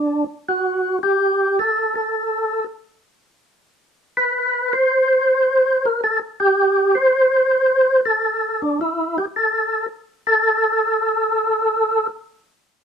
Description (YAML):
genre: jazz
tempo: 108 BPM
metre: 4/4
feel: swing 66% on 8ths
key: unclear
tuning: A4 = 440 Hz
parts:
  - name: percussive tonewheel organ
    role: solo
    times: 0.0-12.1 s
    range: D4 to C5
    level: -16 LUFS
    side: equal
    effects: slow rotary speaker, overdrive, chorus vibrato
room: moderate studio reverb, RT60 0.7 s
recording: band playing live in one room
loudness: -16 LUFS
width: side -7 dB against mid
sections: 0.0-12.7 A section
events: none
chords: none